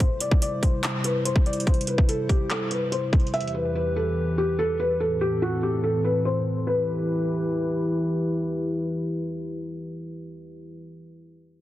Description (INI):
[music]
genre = hip hop, trap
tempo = 144 BPM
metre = 4/4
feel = half-time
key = E minor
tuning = A4 = 440 Hz
[part]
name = felt-muted upright piano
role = melody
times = 0.0-7.9 s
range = F#4 to E5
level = -26 LUFS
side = left 1 dB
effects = tape echo
[part]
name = dark analog pad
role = sustained chords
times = 0.0-10.8 s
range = E2 to C5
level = -27 LUFS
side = equal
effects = chorus
[part]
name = trap drum kit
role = drums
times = 0.0-3.5 s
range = handclaps, hi-hat, kick drum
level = -22 LUFS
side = equal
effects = overdrive
[sound]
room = light reverb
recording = dense, heavily limited modern master, low-pass filter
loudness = -22 LUFS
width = side -14 dB against mid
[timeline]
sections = 0.0-6.7 A section; 6.7-10.0 B section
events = filter sweep 0.0-6.7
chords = 0.0 C; 3.3 Em; 5.0 Am; 6.7 Em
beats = | 0.00 0.42 0.84 1.25 | 1.67 2.09 2.50 2.92 | 3.34 3.75 4.17 4.59 | 5.00 5.42 5.84 6.25 | 6.67 7.09 7.50 7.92 | 8.34 8.75 9.17 9.59